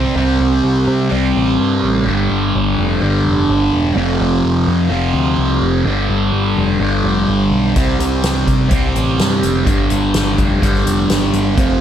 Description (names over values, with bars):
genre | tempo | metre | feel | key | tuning
psychedelic rock | 126 BPM | 4/4 | straight | unclear | A4 = 440 Hz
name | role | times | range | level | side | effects
thick fuzz guitar | riff | 0.0-11.8 s | F2 to C4 | -15 LUFS | right 1 dB | distortion, phaser
growling picked electric bass | bass | 0.0-11.8 s | E1 to C3 | -18 LUFS | equal | overdrive
soft-mallet drum kit | drums | 7.8-11.7 s | hi-hat, kick drum, snare drum | -18 LUFS | equal | none
room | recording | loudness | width
light reverb, studio ambience | none | -13 LUFS | side -10 dB against mid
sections
0.2-11.8 A section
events
none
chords
0.2 C5; 2.1 G5; 4.0 F5; 5.9 G5; 7.8 C5; 9.7 G5